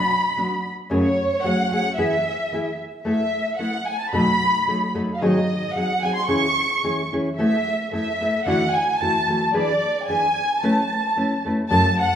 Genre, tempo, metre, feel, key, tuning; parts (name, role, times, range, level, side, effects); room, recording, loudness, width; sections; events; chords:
mexican folk, mariachi; 111 BPM; 2/4; straight; A major; A4 = 439 Hz
warm studio violin section; melody; 0.0-12.2 s; C#5 to C#6; -21 LUFS; equal
nylon-string guitar; accompaniment; 0.4-11.9 s; F#2 to B4; -22 LUFS; left 1 dB
wet large studio reverb, RT60 1.5 s; band playing live in one room; -19 LUFS; side -9 dB against mid
0.0-11.7 A section
0.0 Bm; 0.9 F#madd9; 2.0 E; 3.0 Asus2; 4.1 B7; 5.2 G#7; 6.3 C#m; 7.4 Asus2; 8.5 Dadd9; 9.5 E7; 10.6 Aadd9